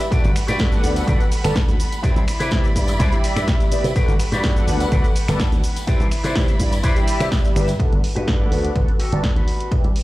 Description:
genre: filtered disco house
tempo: 125 BPM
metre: 4/4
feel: straight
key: G major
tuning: A4 = 440 Hz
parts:
  - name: muted chamber violin section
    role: sustained chords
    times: 0.0-7.8 s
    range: G3 to B5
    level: -30 LUFS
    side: right 1 dB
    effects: sidechain pumping, low-pass filter
  - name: punchy analog drum machine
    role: drums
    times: 0.0-10.0 s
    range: finger snaps, hi-hat, shaker, snare drum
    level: -28 LUFS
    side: equal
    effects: sidechain pumping on hats, studio reverb, sidechain pumping on perc
  - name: tambourine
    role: percussion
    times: 0.0-10.0 s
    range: none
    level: -39 LUFS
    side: left 4 dB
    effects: sidechain pumping on perc, low-pass filter on perc
  - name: mellow synth brass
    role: accompaniment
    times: 0.1-9.9 s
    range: G4 to B5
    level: -26 LUFS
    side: equal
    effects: chorus, phaser, sidechain pumping, low-pass filter
  - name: electric guitar with an envelope filter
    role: riff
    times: 0.1-9.7 s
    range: E4 to D5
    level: -28 LUFS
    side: left 2 dB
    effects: spring reverb, sidechain pumping, low-pass filter
  - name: slap bass with an envelope filter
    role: bass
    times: 0.1-9.9 s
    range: G1 to C3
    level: -23 LUFS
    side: equal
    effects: sidechain pumping, low-pass filter
  - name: electronic kick drum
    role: drums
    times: 0.1-9.8 s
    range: none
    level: -19 LUFS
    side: equal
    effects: studio reverb
room: little or no reverb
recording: played on a big sound system in a bare room, large studio reverb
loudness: -16 LUFS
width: side -17 dB against mid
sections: 0.0-7.8 A section; 7.8-10.0 B section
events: drop 0.0-7.8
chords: 0.1 Gmaj7; 2.0 Cmaj9; 4.0 Gmaj7; 5.9 Cmaj9; 7.8 Gmaj7

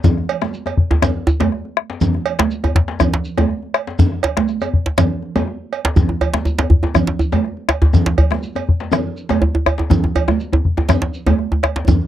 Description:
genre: west african traditional, West African drum ensemble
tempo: 122 BPM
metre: 4/4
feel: straight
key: none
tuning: none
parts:
  - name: bombo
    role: percussion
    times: 0.0-12.0 s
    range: none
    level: -18 LUFS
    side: left 3 dB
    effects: none
  - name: congas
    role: percussion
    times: 0.0-12.0 s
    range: none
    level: -22 LUFS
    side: right 6 dB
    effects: none
  - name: djembe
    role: percussion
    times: 0.0-12.0 s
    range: none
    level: -22 LUFS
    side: left 4 dB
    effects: none
  - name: djembe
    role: percussion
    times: 0.0-12.0 s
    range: none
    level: -17 LUFS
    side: right 1 dB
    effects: none
  - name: shekere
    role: percussion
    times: 0.0-12.0 s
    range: none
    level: -23 LUFS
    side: equal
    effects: none
  - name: cowbell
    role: percussion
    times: 0.3-11.8 s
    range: none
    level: -24 LUFS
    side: right 10 dB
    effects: none
room: little or no reverb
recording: dry, close 1970s-style studio recording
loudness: -15 LUFS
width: side -12 dB against mid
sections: 0.0-12.1 A section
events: drum fill 11.9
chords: none

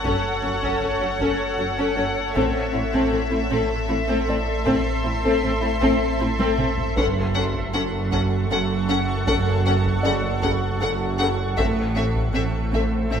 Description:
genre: cinematic, suspense film score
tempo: 78 BPM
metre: 3/4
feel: straight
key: unclear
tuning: A4 = 445 Hz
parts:
  - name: warm studio violin section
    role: melody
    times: 0.0-13.2 s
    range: E5 to F#5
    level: -29 LUFS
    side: left 4 dB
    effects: none
  - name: rich studio viola section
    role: accompaniment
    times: 0.0-13.2 s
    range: C#3 to C#4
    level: -27 LUFS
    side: equal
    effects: none
  - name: granular cloud pad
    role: sustained chords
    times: 0.0-13.2 s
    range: A4 to C#6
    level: -28 LUFS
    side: right 1 dB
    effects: built-in reverb
  - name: dark studio double bass section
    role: bass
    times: 0.0-13.2 s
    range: F#1 to A1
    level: -30 LUFS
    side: right 2 dB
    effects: none
  - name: soft dub sub bass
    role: drone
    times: 0.0-13.2 s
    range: F#1 to A1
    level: -30 LUFS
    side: equal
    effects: none
  - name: solo taiko drums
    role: drums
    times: 0.0-13.2 s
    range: none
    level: -31 LUFS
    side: equal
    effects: none
  - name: felt-muted upright piano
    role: texture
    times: 0.0-13.2 s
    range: B4 to D5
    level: -35 LUFS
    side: equal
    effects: none
  - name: dark studio violin section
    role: second line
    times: 0.1-13.2 s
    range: E4 to A4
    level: -28 LUFS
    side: left 4 dB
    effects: none
  - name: warm studio cello section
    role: bass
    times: 0.1-13.2 s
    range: F#2 to A2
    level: -27 LUFS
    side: right 3 dB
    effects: none
room: wet scoring stage reverb, RT60 2.0 s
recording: minimal, uncompressed stereo recording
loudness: -20 LUFS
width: side -8 dB against mid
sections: 0.0-13.2 A section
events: drum fill 6.4-7.0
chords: 0.0 F#m; 2.4 Am; 7.0 F#m; 11.6 Am

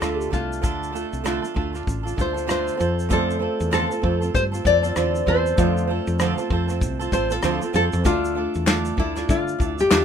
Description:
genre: acoustic pop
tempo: 97 BPM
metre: 4/4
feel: swing 60% on 16ths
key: unclear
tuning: A4 = 438 Hz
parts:
  - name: nylon-string guitar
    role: melody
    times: 0.0-10.0 s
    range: E4 to D5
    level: -24 LUFS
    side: left 2 dB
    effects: none
  - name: fingerpicked steel-string acoustic guitar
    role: accompaniment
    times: 0.0-10.0 s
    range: D3 to D5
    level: -26 LUFS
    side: right 6 dB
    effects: none
  - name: woody fretless electric bass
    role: bass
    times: 0.0-10.0 s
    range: A1 to D3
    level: -26 LUFS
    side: left 1 dB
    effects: none
  - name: soft brush drum kit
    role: drums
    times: 0.0-10.0 s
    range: kick drum, rim click, shaker, snare drum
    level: -25 LUFS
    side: left 1 dB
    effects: none
  - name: felt-muted upright piano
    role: accompaniment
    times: 3.1-10.0 s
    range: A3 to D5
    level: -32 LUFS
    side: left 3 dB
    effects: none
  - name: group handclap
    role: percussion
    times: 8.7-10.0 s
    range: none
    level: -26 LUFS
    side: left 6 dB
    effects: none
room: light reverb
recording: minimal, uncompressed stereo recording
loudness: -20 LUFS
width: side -8 dB against mid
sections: 0.0-8.1 A section; 8.1-10.0 B section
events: none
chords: 0.0 Dm; 2.8 F6

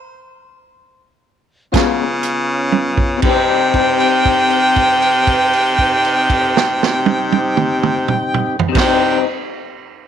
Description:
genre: slow blues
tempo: 39-43 BPM (dotted quarters)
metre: 12/8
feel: straight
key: C minor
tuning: A4 = 438 Hz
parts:
  - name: electric guitar through a small old amp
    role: accompaniment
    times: 1.7-9.3 s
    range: C3 to F4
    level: -20 LUFS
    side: left 15 dB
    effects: tremolo
  - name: tonewheel organ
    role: sustained chords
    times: 1.7-9.2 s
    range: Cb4 to G4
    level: -23 LUFS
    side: left 1 dB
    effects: slow rotary speaker
  - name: edgy baritone saxophone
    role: bass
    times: 1.7-9.2 s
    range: C3 to Db3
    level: -20 LUFS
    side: left 1 dB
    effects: none
  - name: vintage drum kit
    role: drums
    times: 1.7-9.0 s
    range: crash cymbal, hi-hat, kick drum, snare drum, toms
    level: -18 LUFS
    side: right 5 dB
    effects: none
  - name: mellow harmonica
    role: melody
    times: 3.3-9.2 s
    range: G5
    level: -16 LUFS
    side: right 1 dB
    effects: none
room: light reverb, small room ambience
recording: 1960s-style stereo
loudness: -12 LUFS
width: side -9 dB against mid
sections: 0.0-3.2 A section; 3.2-9.4 B section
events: slowing down 0.0-3.2; stop 0.0-1.7; drum fill 2.7-3.2; held note 3.2-8.7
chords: 0.0 N.C.; 1.7 Db7; 3.2 Cm

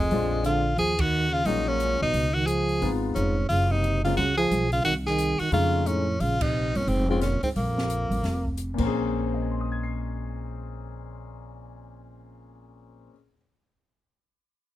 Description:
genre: jazz, small-group swing and bop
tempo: 177 BPM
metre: 4/4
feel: swing 63% on 8ths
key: Bb minor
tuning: A4 = 440 Hz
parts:
  - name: bright tenor saxophone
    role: melody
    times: 0.0-8.5 s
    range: Ab3 to Ab4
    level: -26 LUFS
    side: left 1 dB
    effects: none
  - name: breathy trombone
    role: second line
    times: 0.0-8.5 s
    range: F2 to F3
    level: -29 LUFS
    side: right 4 dB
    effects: none
  - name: upright bass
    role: bass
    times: 0.0-13.1 s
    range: F1 to F2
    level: -28 LUFS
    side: equal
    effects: none
  - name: warm grand piano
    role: accompaniment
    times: 0.1-13.4 s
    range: Bb2 to C7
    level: -30 LUFS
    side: left 6 dB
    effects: none
  - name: open jazz drum kit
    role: drums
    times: 0.1-8.8 s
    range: crash cymbal, hi-hat, kick drum, ride cymbal, snare drum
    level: -35 LUFS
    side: equal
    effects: none
room: little or no reverb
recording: close, detailed microphones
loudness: -23 LUFS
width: side -14 dB against mid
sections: 0.0-8.9 A section; 8.9-11.6 B section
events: band accent 1.0, 6.4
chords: 0.1 Bb7; 0.8 Ebm11; 2.1 Db9; 3.5 Gbmaj7sus2; 4.9 Cdim; 5.5 F7alt; 6.2 Bbmadd9; 8.9 Bbm9

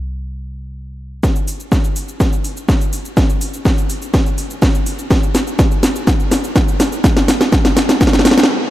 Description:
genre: melodic techno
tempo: 124 BPM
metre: 4/4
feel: straight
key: unclear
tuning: A4 = 439 Hz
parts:
  - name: plucky analog bass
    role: bass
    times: 0.0-1.2 s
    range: C2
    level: -26 LUFS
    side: equal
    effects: sidechain pumping
  - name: electronic kick drum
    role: drums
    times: 1.2-8.1 s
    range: none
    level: -15 LUFS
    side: equal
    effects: overdrive
  - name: house drum kit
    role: drums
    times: 1.2-8.5 s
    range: hi-hat, shaker, snare drum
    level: -15 LUFS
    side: equal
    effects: overdrive, sidechain pumping on perc, sidechain pumping on hats
room: moderate huge ambient reverb, RT60 9.1 s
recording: none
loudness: -12 LUFS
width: side -14 dB against mid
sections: 0.0-1.2 A section; 1.2-8.7 B section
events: build-up 1.2-8.7; drum fill 1.2-8.5; stop 8.5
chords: none

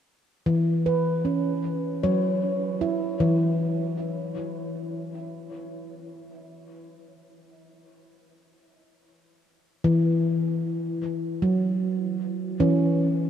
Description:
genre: ambient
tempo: 77 BPM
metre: 4/4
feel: straight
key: unclear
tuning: A4 = 442 Hz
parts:
  - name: handpan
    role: solo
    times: 0.5-13.3 s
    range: E3 to C#5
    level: -23 LUFS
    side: equal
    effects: diffuse ambient delay
room: wet huge ambient reverb, RT60 7.5 s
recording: dark, warm production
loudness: -23 LUFS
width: side -9 dB against mid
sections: 0.0-9.8 A section; 9.8-13.3 B section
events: none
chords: 0.0 E5; 3.6 N.C.; 9.8 E5

